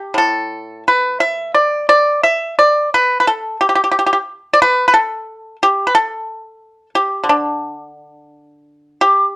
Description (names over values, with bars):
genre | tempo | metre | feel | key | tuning
chinese traditional | 88 BPM | 4/4 | rubato | D zhi mode | A4 = 444 Hz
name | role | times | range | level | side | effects
pipa | solo | 0.0-9.4 s | A2 to E5 | -12 LUFS | equal | none
room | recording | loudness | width
light reverb | worn, warbling old tape, cassette tape, warbly pitch drift | -12 LUFS | side -21 dB against mid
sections
0.0-9.4 A section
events
none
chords
none